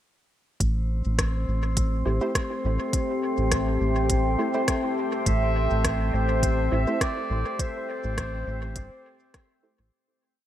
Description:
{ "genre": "ambient dub", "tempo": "103 BPM", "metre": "4/4", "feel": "swing 54% on 16ths", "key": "A minor", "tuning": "A4 = 440 Hz", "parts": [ { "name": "deep dark ambient pad", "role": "sustained chords", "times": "1.9-9.9 s", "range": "A3 to G5", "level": "-30 LUFS", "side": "equal", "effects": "chorus, built-in reverb" }, { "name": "round analog bass", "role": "bass", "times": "0.6-9.9 s", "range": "G1 to A1", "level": "-25 LUFS", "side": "equal", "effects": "none" }, { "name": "electronic kick drum", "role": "drums", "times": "0.6-9.5 s", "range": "none", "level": "-28 LUFS", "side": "equal", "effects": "none" }, { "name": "organic electronic drum kit", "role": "drums", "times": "0.6-9.5 s", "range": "hi-hat, rim click", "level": "-32 LUFS", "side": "equal", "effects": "dub echo" }, { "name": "drifting glass-harmonics texture", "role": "texture", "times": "0.9-9.9 s", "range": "C4", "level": "-32 LUFS", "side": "left 4 dB", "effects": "chorus, built-in reverb" }, { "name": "filtered dub chord stab", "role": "stabs", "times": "2.1-9.8 s", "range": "A3 to C5", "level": "-33 LUFS", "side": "right 2 dB", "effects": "chorus, cassette tape, dub echo" }, { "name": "warm clarinet", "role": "melody", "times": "5.3-9.6 s", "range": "C5 to E5", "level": "-30 LUFS", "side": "right 2 dB", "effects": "dub echo" } ], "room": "light reverb", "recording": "none", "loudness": "-23 LUFS", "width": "side -12 dB against mid", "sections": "0.6-9.9 groove", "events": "fade-out 6.8-9.9", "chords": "0.6 Am7" }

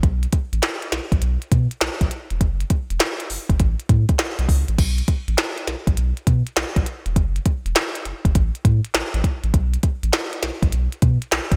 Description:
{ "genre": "R&B, new jack swing", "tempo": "101 BPM", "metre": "4/4", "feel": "swing 66% on 16ths", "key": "unclear", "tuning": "A4 = 441 Hz", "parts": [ { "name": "round analog bass", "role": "bass", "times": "0.0-11.6 s", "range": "E1 to B2", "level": "-23 LUFS", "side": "equal", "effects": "none" }, { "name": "glitchy drum kit", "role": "drums", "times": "0.0-11.6 s", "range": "crash cymbal, handclaps, hi-hat, kick drum, snare drum", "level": "-22 LUFS", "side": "equal", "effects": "gated reverb" } ], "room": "light reverb", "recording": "bright 1980s-style digital production", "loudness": "-21 LUFS", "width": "mono", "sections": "0.0-4.8 A section; 4.8-11.6 B section", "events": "none", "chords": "none" }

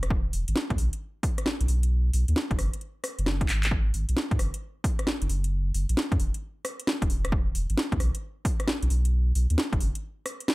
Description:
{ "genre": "UK garage, two-step garage", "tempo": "133 BPM", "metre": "4/4", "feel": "swing 65% on 16ths", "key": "unclear", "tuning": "A4 = 439 Hz", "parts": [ { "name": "saturated sub bass", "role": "bass", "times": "0.0-9.9 s", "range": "E1 to G#2", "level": "-25 LUFS", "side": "equal", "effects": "sidechain pumping" }, { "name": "house drum kit", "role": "drums", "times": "0.0-10.5 s", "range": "handclaps, hi-hat, rim click, snare drum", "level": "-29 LUFS", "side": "equal", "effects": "overdrive" }, { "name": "electronic kick drum", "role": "drums", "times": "0.1-9.8 s", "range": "none", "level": "-28 LUFS", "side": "equal", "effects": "overdrive" } ], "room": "little or no reverb", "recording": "none", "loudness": "-24 LUFS", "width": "side -21 dB against mid", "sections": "0.0-10.5 A section", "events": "drum fill 3.5", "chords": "none" }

